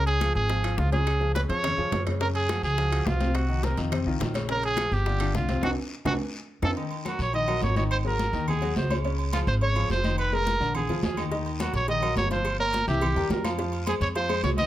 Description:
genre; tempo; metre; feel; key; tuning
latin, salsa; 211 BPM; 4/4; straight; unclear; A4 = 440 Hz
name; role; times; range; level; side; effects
clear trumpet; melody; 0.0-14.7 s; F4 to Eb5; -28 LUFS; right 2 dB; none
clear upright piano; accompaniment; 0.0-14.7 s; C3 to F5; -31 LUFS; left 3 dB; none
upright bass; bass; 0.0-14.7 s; F1 to Gb2; -27 LUFS; equal; none
congas; percussion; 0.1-14.7 s; none; -35 LUFS; left 2 dB; none
timbales and agogo bells; percussion; 0.1-14.7 s; none; -35 LUFS; right 7 dB; none
bongos and cowbell; percussion; 0.2-6.7, 11.3-14.7 s; none; -37 LUFS; left 5 dB; none
claves; percussion; 0.2-14.4 s; none; -43 LUFS; left 2 dB; none
guiro; percussion; 2.2-14.7 s; none; -44 LUFS; left 4 dB; none
room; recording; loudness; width
light reverb; close, detailed microphones; -24 LUFS; side -13 dB against mid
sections
0.0-6.8 A section; 6.8-14.7 B section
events
band accent 5.6-6.8; drum fill 6.1-6.8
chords
0.0 Db; 2.2 Gbsus2; 3.4 Cdim; 3.9 F5; 4.5 Bbm7; 5.1 G5; 5.6 Cdim; 6.2 F7(no3); 6.8 Ebm; 7.9 Ab5; 9.0 Dbmaj7; 10.2 Fm7b5; 10.7 Bb7; 11.3 Ebmadd9; 12.5 Gm7b5; 13.0 C7; 13.6 Fm7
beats
0.21 0.50 0.78 | 1.07 1.35 1.64 1.92 | 2.21 2.49 2.78 3.06 | 3.35 3.63 3.92 4.21 | 4.49 4.78 5.06 5.34 | 5.63 5.92 6.20 6.48 | 6.77 7.05 7.34 7.62 | 7.91 8.19 8.48 8.76 | 9.04 9.33 9.61 9.90 | 10.18 10.46 10.75 11.03 | 11.32 11.60 11.88 12.17 | 12.45 12.74 13.02 13.30 | 13.59 13.87 14.16 14.44

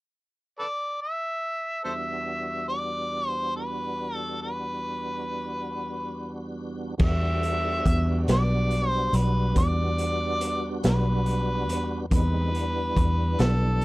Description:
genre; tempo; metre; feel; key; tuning
slow blues; 47 BPM (dotted quarters); 12/8; straight; E minor; A4 = 440 Hz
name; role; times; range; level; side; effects
warm harmonica; melody; 0.6-13.8 s; A4 to E5; -29 LUFS; equal; overdrive
tonewheel organ; sustained chords; 1.8-13.8 s; E2 to F#4; -32 LUFS; equal; slow rotary speaker, chorus vibrato
vintage muted fingered electric bass; bass; 7.0-13.8 s; B1 to E2; -24 LUFS; equal; none
raw garage drum kit; drums; 7.0-13.8 s; crash cymbal, hi-hat, kick drum, snare drum; -27 LUFS; equal; none
room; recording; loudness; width
little or no reverb; none; -24 LUFS; side -20 dB against mid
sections
0.0-1.9 A section; 1.9-7.0 B section; 7.0-13.8 C section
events
none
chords
0.0 N.C.; 1.9 Em7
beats
0.58 | 1.87 3.15 4.43 5.71 | 7.00 8.28 9.55 10.83 | 12.11 13.38

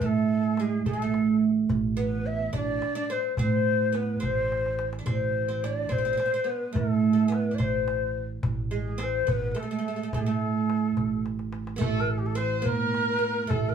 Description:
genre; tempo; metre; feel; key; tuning
Arabic maqam ensemble; 71 BPM (dotted quarters); 6/8; straight; A maqam nahawand; A4 = 435 Hz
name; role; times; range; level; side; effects
breathy ney; melody; 0.0-13.7 s; G4 to E5; -29 LUFS; left 4 dB; none
oud; second line; 0.0-13.7 s; G#3 to D4; -28 LUFS; right 7 dB; none
upright bass; bass; 0.0-13.7 s; A1 to A2; -31 LUFS; right 2 dB; none
darbuka; percussion; 0.0-13.6 s; none; -33 LUFS; equal; none
dark chamber violin section; second line; 11.8-13.7 s; A4 to C5; -31 LUFS; left 2 dB; none
room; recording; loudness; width
moderate studio reverb, RT60 0.8 s; band playing live in one room, small room ambience; -24 LUFS; side -7 dB against mid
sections
0.0-11.8 A section; 11.8-13.7 B section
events
drum fill 4.5-5.1, 11.2-11.8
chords
none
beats
| 0.01 0.85 | 1.69 2.53 | 3.38 4.22 | 5.06 5.90 | 6.75 7.59 | 8.43 9.28 | 10.12 10.97 | 11.81 12.66 | 13.50

